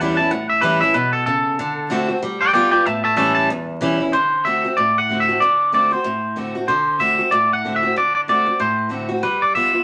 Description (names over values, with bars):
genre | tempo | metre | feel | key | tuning
rock | 188 BPM | 4/4 | swing 59% on 8ths | D mixolydian | A4 = 440 Hz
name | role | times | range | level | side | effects
twangy electric guitar | melody | 0.0-9.8 s | A4 to A5 | -19 LUFS | equal | none
picked steel-string acoustic guitar | accompaniment | 0.0-9.8 s | E2 to F#4 | -24 LUFS | equal | none
room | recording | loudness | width
moderate studio reverb, RT60 0.8 s | vinyl crackle | -18 LUFS | mono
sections
0.0-4.1 A section; 4.1-9.8 B section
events
clean electric guitar solo 0.0-4.1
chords
0.0 A7; 1.6 D7; 2.2 G7; 2.9 A7; 4.1 D7; 9.2 G7